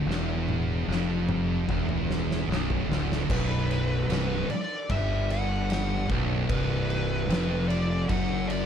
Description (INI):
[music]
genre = stoner and doom metal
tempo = 75 BPM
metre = 4/4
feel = straight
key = B phrygian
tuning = A4 = 438 Hz
[part]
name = high-gain distorted guitar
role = riff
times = 0.0-8.7 s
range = B1 to G2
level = -34 LUFS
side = equal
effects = distortion
[part]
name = thick fuzz guitar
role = riff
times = 0.0-8.7 s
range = B1 to G2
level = -32 LUFS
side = left 8 dB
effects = distortion
[part]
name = thick fuzz guitar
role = riff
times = 0.0-8.7 s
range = B1 to G2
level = -31 LUFS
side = right 9 dB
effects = distortion
[part]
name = fuzz fingered electric bass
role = bass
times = 0.0-8.7 s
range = B0 to G1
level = -31 LUFS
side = equal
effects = overdrive, tube saturation
[part]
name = oversized low-tuned drum kit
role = drums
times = 0.1-8.7 s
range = crash cymbal, kick drum, snare drum, toms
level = -32 LUFS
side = equal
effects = none
[part]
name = fuzz lead guitar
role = melody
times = 3.3-8.7 s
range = B4 to F#5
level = -33 LUFS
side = left 2 dB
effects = wah, distortion
[sound]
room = little or no reverb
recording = dark, warm production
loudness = -24 LUFS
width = side -8 dB against mid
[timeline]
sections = 0.0-3.3 A section; 3.3-8.7 B section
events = drum fill 0.1-3.3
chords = 0.0 Bm; 3.3 B5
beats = | 0.09 0.89 1.69 2.50 | 3.30 4.10 4.90 5.70 | 6.50 7.30 8.10